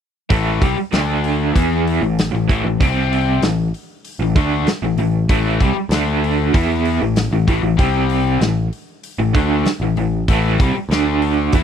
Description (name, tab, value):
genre	classic rock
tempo	96 BPM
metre	4/4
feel	straight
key	unclear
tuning	A4 = 440 Hz
part	crunchy overdriven guitar	riff	0.3-11.6 s	A2 to E4	-20 LUFS	left 10 dB	none
part	raw garage guitar	riff	0.3-11.6 s	A2 to E4	-21 LUFS	right 12 dB	overdrive, tremolo
part	picked electric bass	bass	0.3-11.6 s	A1 to E2	-20 LUFS	right 1 dB	none
part	big rock drum kit	drums	0.3-11.6 s	hi-hat, kick drum, snare drum	-18 LUFS	equal	none
room	little or no reverb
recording	dry, close 1970s-style studio recording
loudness	-15 LUFS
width	side -8 dB against mid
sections	0.3-11.6 A section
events	none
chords	0.3 A5; 0.9 D5; 1.5 A5; 2.8 C5; 3.4 A5; 5.9 D5; 6.5 A5; 7.8 C5; 8.4 A5; 10.9 D5